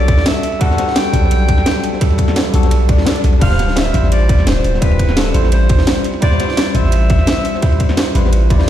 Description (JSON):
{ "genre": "liquid drum and bass", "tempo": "171 BPM", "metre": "4/4", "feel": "straight", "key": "D dorian", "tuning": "A4 = 439 Hz", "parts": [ { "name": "breathy alto saxophone", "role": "melody", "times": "0.0-8.2 s", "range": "A4 to G5", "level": "-22 LUFS", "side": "equal", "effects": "dub echo" }, { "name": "tine electric piano", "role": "accompaniment", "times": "0.0-8.7 s", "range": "F#3 to F#5", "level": "-19 LUFS", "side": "left 1 dB", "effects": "medium stereo tremolo, ping-pong delay" }, { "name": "long sustained 808-style bass", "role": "bass", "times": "0.0-8.6 s", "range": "D1 to B1", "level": "-14 LUFS", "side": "equal", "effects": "none" }, { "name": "crunchy breakbeat drum kit", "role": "drums", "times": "0.1-8.6 s", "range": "ride cymbal, snare drum", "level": "-25 LUFS", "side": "equal", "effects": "high-pass filter on cymbals, high-pass filter on snare, high-pass filter on room" }, { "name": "drum and bass drum kit", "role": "drums", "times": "0.1-8.7 s", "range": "crash cymbal, hi-hat, snare drum", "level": "-20 LUFS", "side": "equal", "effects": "overdrive" }, { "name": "electronic kick drum", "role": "drums", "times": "0.1-8.6 s", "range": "none", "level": "-13 LUFS", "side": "equal", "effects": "overdrive" }, { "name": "swell", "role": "sound effects", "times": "2.8-3.4 s", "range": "none", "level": "-26 LUFS", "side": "left 2 dB", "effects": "none" } ], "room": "studio reverb", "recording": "played on a big sound system in a bare room, large studio reverb", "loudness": "-11 LUFS", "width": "side -11 dB against mid", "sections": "0.0-8.7 A section", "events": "swell 2.8-3.4", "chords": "0.0 Em11 (rootless); 3.4 Dm11" }